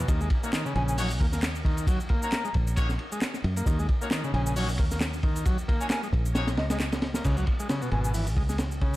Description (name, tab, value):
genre	breakbeat, breaks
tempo	134 BPM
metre	4/4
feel	swing 56% on 16ths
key	unclear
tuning	A4 = 440 Hz
part	combo organ	riff	0.0-9.0 s	B2 to A#3	-33 LUFS	equal	overdrive
part	fingered electric bass	bass	0.0-9.0 s	G#1 to F#2	-29 LUFS	equal	none
part	crunchy breakbeat drum kit	drums	0.1-9.0 s	crash cymbal, hi-hat, kick drum, ride cymbal, snare drum	-27 LUFS	equal	none
part	electronic shaker and handclaps	drums	0.1-9.0 s	none	-38 LUFS	equal	overdrive
part	brilliant horn section	stabs	0.4-6.5 s	A#3 to C#5	-38 LUFS	left 2 dB	vintage 12-bit sampler grit, digital delay
part	breathy mellow silver concert flute	melody	0.8-8.1 s	D#5 to A#5	-37 LUFS	equal	AM radio sound, digital delay
room	light reverb, studio reverb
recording	dark, warm production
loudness	-24 LUFS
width	side -17 dB against mid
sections	0.0-7.2 A section; 7.2-9.0 B section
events	drop 0.0-7.2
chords	0.1 D#m7; 7.2 C#7(no3)